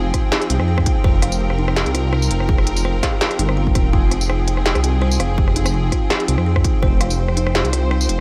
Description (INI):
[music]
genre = half-time drum and bass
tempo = 166 BPM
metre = 4/4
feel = swing 54% on 16ths, half-time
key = F minor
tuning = A4 = 440 Hz
[part]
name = rich studio string section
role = sustained chords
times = 0.0-8.2 s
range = F3 to G5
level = -28 LUFS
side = equal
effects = vintage 12-bit sampler grit, sidechain pumping
[part]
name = buzzing kalimba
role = arpeggios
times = 0.0-8.2 s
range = Eb4 to F5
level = -29 LUFS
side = equal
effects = digital delay
[part]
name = dark detuned saw bass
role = bass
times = 0.0-8.2 s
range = Eb1 to F2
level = -21 LUFS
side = equal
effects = none
[part]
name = electronic kick drum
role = drums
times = 0.1-6.9 s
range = none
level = -20 LUFS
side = equal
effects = small room ambience
[part]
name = industrial drum kit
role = drums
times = 0.1-8.2 s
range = hi-hat, rim click, snare drum, tambourine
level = -24 LUFS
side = equal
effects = small room ambience
[sound]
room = little or no reverb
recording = none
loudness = -18 LUFS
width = mono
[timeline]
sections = 0.0-8.2 A section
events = none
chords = 0.0 Fmadd9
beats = 0.32 0.68 | 1.04 1.40 1.76 2.13 | 2.49 2.85 3.21 3.57 | 3.93 4.29 4.66 5.02 | 5.38 5.74 6.10 6.46 | 6.83 7.19 7.55 7.91